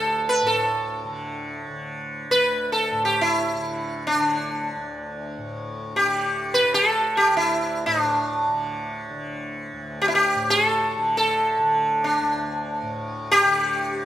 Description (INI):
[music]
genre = indian classical, Hindustani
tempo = free time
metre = none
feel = none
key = D raga durga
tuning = A4 = 440 Hz
[part]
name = sitar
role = melody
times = 0.0-14.1 s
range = D4 to B4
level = -20 LUFS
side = equal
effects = none
[part]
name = tanpura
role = drone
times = 0.0-14.1 s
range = D2 to D3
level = -31 LUFS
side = left 1 dB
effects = none
[sound]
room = moderate recital hall reverb, RT60 1.6 s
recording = minimal, uncompressed stereo recording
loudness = -20 LUFS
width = side -12 dB against mid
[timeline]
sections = 0.0-14.1 A section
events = none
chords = none